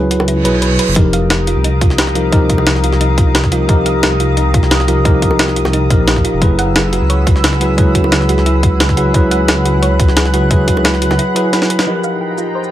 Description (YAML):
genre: liquid drum and bass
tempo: 176 BPM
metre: 4/4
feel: straight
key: unclear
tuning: A4 = 440 Hz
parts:
  - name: tine electric piano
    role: accompaniment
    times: 0.0-12.7 s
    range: F3 to Cb5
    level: -16 LUFS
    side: equal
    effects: digital delay
  - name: thumb-piano-like synth pluck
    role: arpeggios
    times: 0.0-12.7 s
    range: Eb4 to Gb5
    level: -22 LUFS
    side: right 4 dB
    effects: chorus, digital delay
  - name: dark detuned saw bass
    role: bass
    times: 0.0-11.2 s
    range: F1 to Db2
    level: -15 LUFS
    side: equal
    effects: none
  - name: jungle sampler-style drum kit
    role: drums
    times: 0.1-12.7 s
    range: hi-hat, shaker, snare drum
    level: -17 LUFS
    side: equal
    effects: none
  - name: bongos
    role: percussion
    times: 0.2-11.2 s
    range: none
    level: -23 LUFS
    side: equal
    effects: none
  - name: reverse cymbal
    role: sound effects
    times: 0.4-1.0 s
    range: none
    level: -21 LUFS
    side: right 5 dB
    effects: none
  - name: glassy FM pad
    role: sustained chords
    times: 1.2-12.7 s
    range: F4 to Gb6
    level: -21 LUFS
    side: left 1 dB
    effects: ensemble chorus, built-in reverb, sidechain pumping
  - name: electronic kick drum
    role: drums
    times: 1.0-10.7 s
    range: none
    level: -13 LUFS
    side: equal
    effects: none
room: light reverb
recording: none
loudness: -10 LUFS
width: side -12 dB against mid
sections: 0.0-11.9 A section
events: filter sweep on synth arpeggio sound 0.0-11.9; kick drops out 0.3-1.0; reverse cymbal 0.4-1.0; drum fill 11.5-11.9; band accent 11.8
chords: 0.0 Gb9sus4; 1.0 F9sus4; 6.4 Gb9sus4; 11.9 F9sus4